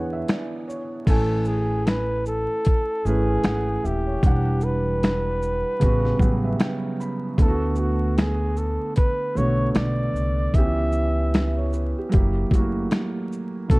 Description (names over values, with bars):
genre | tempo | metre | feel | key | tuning
lo-fi hip hop | 76 BPM | 4/4 | swing 60% on 16ths | A major | A4 = 440 Hz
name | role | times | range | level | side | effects
breathy flugelhorn | melody | 0.0-13.8 s | F#4 to E5 | -27 LUFS | equal | low-pass filter
felt-muted upright piano | accompaniment | 0.0-13.8 s | C#3 to B5 | -26 LUFS | right 2 dB | low-pass filter
upright bass | bass | 0.0-13.8 s | D#1 to E2 | -24 LUFS | equal | none
dusty soul sampler-style drum kit | drums | 0.3-13.8 s | crash cymbal, finger snaps, hi-hat, kick drum, shaker, snare drum | -20 LUFS | equal | none
room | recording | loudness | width
light reverb, studio ambience | vinyl crackle | -20 LUFS | side -23 dB against mid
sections
0.0-1.1 A section; 1.1-13.8 A section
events
break 0.0-1.1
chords
0.0 E7; 1.1 Amaj7; 4.2 Em9; 5.8 A13; 7.4 D6; 10.5 C#m7b5; 12.1 F#7b9